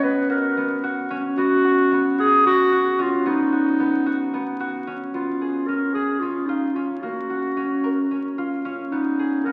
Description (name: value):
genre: contemporary instrumental, contemporary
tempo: 223 BPM (eighths)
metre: 7/8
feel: straight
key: unclear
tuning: A4 = 440 Hz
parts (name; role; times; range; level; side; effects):
- warm clarinet; melody; 0.0-9.5 s; Eb4 to Cb5; -24 LUFS; equal; none
- concert harp; arpeggios; 0.0-9.5 s; Bb3 to Bb4; -25 LUFS; equal; none
room: wet concert hall reverb, RT60 2.2 s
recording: very old 78 rpm record, vinyl crackle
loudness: -22 LUFS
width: mono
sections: 0.0-5.1 A section; 5.1-9.5 B section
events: none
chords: 0.0 Cb; 5.1 Db7; 7.0 Gbmaj7; 8.9 Abm